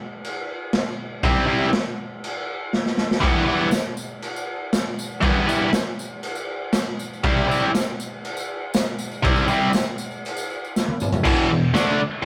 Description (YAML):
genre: garage rock duo or trio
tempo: 120 BPM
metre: 4/4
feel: straight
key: unclear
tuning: A4 = 440 Hz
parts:
  - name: raw garage drum kit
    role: drums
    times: 0.2-11.9 s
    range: crash cymbal, kick drum, snare drum, toms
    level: -26 LUFS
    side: equal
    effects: none
  - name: biting overdriven guitar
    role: riff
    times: 1.2-12.2 s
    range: E2 to E4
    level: -22 LUFS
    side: equal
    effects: none
  - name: tambourine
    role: percussion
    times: 3.7-11.9 s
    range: none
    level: -40 LUFS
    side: equal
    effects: none
room: moderate stone room reverb, RT60 1.1 s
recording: rough rehearsal-room recording, tube saturation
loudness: -23 LUFS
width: mono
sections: 0.0-11.3 A section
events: drum fill 2.7-3.2, 10.8-11.3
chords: 0.0 C; 3.2 Em; 7.2 C; 11.3 E5